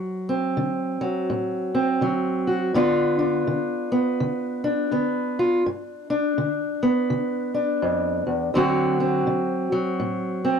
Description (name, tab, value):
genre	blues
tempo	83 BPM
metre	4/4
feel	swing 61% on 8ths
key	unclear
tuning	A4 = 443 Hz
part	fingerpicked steel-string acoustic guitar	solo	0.0-10.6 s	D2 to F#4	-21 LUFS	equal	none
room	studio reverb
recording	dry, close 1970s-style studio recording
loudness	-21 LUFS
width	side -6 dB against mid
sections	0.0-10.6 A section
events	none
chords	0.0 D7; 2.7 G7; 8.6 D7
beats	0.56 1.29 2.02 | 2.74 3.47 4.20 4.92 | 5.65 6.37 7.10 7.82 | 8.55 9.28 10.00